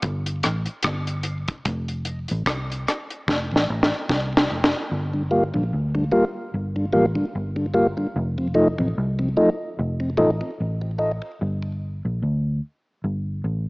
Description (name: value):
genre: dub reggae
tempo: 74 BPM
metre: 4/4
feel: swing 57% on 16ths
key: G minor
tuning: A4 = 441 Hz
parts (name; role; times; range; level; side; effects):
- vintage muted fingered electric bass; bass; 0.0-13.7 s; F1 to D2; -25 LUFS; equal; none
- deep reggae drum kit; drums; 0.0-4.8 s; hi-hat, kick drum, rim click, snare drum; -22 LUFS; equal; none
- mellow tonewheel organ; accompaniment; 0.3-11.7 s; F2 to F4; -21 LUFS; equal; slow rotary speaker, high-pass filter
room: moderate echo chamber reverb, RT60 2.0 s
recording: small speaker sound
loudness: -21 LUFS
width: side -27 dB against mid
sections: 0.0-4.9 A section; 4.9-13.7 B section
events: drum fill 3.3-4.9; break 11.4-13.7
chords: 0.0 Gm7; 1.7 F7; 4.9 Gm7; 8.2 F7; 11.4 G5